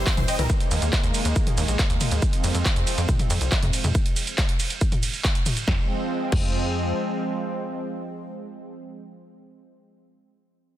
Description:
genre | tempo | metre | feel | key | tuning
uplifting trance | 139 BPM | 4/4 | straight | F minor | A4 = 440 Hz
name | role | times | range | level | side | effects
big supersaw lead | melody | 0.0-0.5 s | Bb4 to G5 | -31 LUFS | left 1 dB | phaser, sidechain pumping, tape echo
lush unison pad | sustained chords | 0.0-8.7 s | Eb3 to C4 | -29 LUFS | right 1 dB | chorus, sidechain pumping
tight sequencer bass | bass | 0.0-6.9 s | Bb1 to F2 | -25 LUFS | equal | sidechain pumping
electronic kick drum | drums | 0.1-6.5 s | none | -23 LUFS | equal | overdrive
punchy analog drum machine | drums | 0.1-6.5 s | crash cymbal, handclaps, hi-hat, ride cymbal, shaker, snare drum, toms | -27 LUFS | right 1 dB | none
room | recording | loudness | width
digital ambience | dense, heavily limited modern master | -21 LUFS | side -13 dB against mid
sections
0.0-5.7 A section; 5.7-9.1 B section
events
drop 0.0-5.7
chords
0.5 Ebsus4; 2.2 Fm; 4.0 N.C.; 5.7 Fm

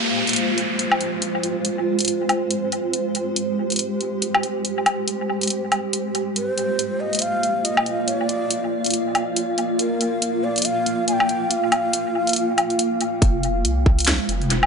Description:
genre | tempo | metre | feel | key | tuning
deep dubstep | 140 BPM | 4/4 | swing 58% on 16ths, half-time | F dorian | A4 = 437 Hz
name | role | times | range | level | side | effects
granular cloud pad | sustained chords | 0.0-14.7 s | Ab3 to F5 | -23 LUFS | right 1 dB | built-in reverb
downlifter and riser | sound effects | 0.0-2.9, 14.0-14.7 s | none | -27 LUFS | right 2 dB | none
garage drum kit | drums | 0.3-14.7 s | handclaps, hi-hat, snare drum, woodblock | -22 LUFS | left 1 dB | high-pass filter on hats, high-pass filter on snare, high-pass filter on perc, dub echo
breathy mellow ney | melody | 6.4-12.8 s | Bb4 to Ab5 | -26 LUFS | equal | dub echo
deep soft wobble bass | bass | 13.2-14.7 s | F1 to C2 | -22 LUFS | equal | chorus
electronic kick drum | drums | 13.2-14.0 s | none | -16 LUFS | equal | none
room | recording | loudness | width
moderate echo chamber reverb, RT60 2.0 s | echo-heavy mix, nothing above 10.6 kHz | -19 LUFS | side -5 dB against mid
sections
0.0-13.2 A section; 13.2-14.7 B section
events
build-up 13.2-14.7; filter sweep on ambient pad 13.2-14.7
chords
0.0 Fm; 6.4 Bb5; 13.2 Fm

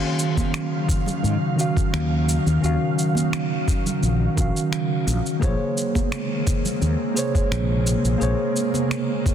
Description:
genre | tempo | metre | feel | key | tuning
sunset chillout | 86 BPM | 4/4 | straight | Eb minor | A4 = 440 Hz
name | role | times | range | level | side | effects
mellow tine electric piano | accompaniment | 0.0-9.3 s | Eb3 to F5 | -24 LUFS | moving between left 3 dB and right 3 dB | auto-pan, tape echo
ethereal airy pad | sustained chords | 0.0-9.3 s | C3 to F5 | -26 LUFS | equal | ensemble chorus, built-in reverb
electronic shaker and finger snaps | drums | 0.2-9.3 s | none | -31 LUFS | equal | soft clipping on snare
electronic kick drum | drums | 0.4-9.3 s | none | -22 LUFS | equal | none
congas | percussion | 0.4-8.9 s | none | -32 LUFS | right 4 dB | none
mellow fretless electric bass | bass | 1.2-8.3 s | Bb1 to Ab2 | -21 LUFS | equal | wide subtle chorus
room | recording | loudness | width
light reverb | dense, heavily limited modern master | -20 LUFS | side -9 dB against mid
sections
0.0-9.3 A section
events
none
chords
0.0 Ebm9; 5.4 Bbm9

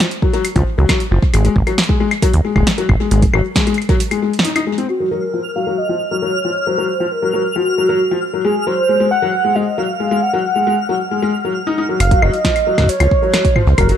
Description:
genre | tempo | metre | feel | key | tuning
IDM | 135 BPM | 4/4 | straight | Gb lydian | A4 = 440 Hz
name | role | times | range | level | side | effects
felt-muted upright piano | arpeggios | 0.0-14.0 s | F3 to Eb4 | -19 LUFS | left 5 dB | low-pass filter, digital delay
electro analog drum machine | drums | 0.0-4.9, 12.0-14.0 s | claves, hi-hat, snare drum, toms | -19 LUFS | equal | low-pass filter on hats, low-pass filter on perc, low-pass filter on snare, low-pass filter on toms, digital delay
electronic kick drum | drums | 0.2-4.0, 12.1-13.9 s | none | -16 LUFS | right 1 dB | none
deep acid bass | bass | 0.6-3.4, 12.0-13.9 s | Eb1 to Eb2 | -13 LUFS | right 1 dB | tube saturation
warm velvety synth lead | melody | 4.9-13.9 s | Gb4 to Gb5 | -18 LUFS | right 2 dB | chorus, vintage 12-bit sampler grit, ping-pong delay
twinkling granular texture | texture | 5.2-12.0 s | F6 | -25 LUFS | left 1 dB | built-in reverb
room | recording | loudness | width
light reverb, digital ambience | none | -13 LUFS | side -9 dB against mid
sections
0.0-4.9 A section; 4.9-12.0 B section; 12.0-14.0 C section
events
break 4.0-4.9; filter sweep on felt piano 4.9-12.0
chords
0.0 Gb5; 1.3 N.C.; 4.9 Gbmaj7; 8.4 Ab7; 12.0 Gbmaj7(no3)

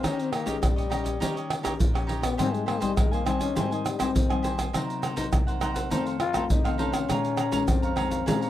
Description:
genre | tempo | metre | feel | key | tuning
samba and choro | 102 BPM | 4/4 | straight | unclear | A4 = 443 Hz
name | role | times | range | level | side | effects
growling trombone | second line | 0.0-8.5 s | Eb3 to F4 | -30 LUFS | left 5 dB | none
cavaquinho | accompaniment | 0.0-8.5 s | Eb4 to Bb5 | -32 LUFS | right 3 dB | none
nylon-string guitar | accompaniment | 0.0-8.5 s | F2 to G4 | -31 LUFS | left 5 dB | none
egg shaker, surdo, pandeiro and tamborim | percussion | 0.0-8.5 s | none | -26 LUFS | right 1 dB | none
room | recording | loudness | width
light reverb | dry, close 1970s-style studio recording | -24 LUFS | side -12 dB against mid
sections
0.0-8.5 A section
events
trombone solo 0.0-8.5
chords
0.0 Eb7; 2.4 Abmaj7; 4.7 Cm7b5; 5.9 F7; 7.1 Bbm11

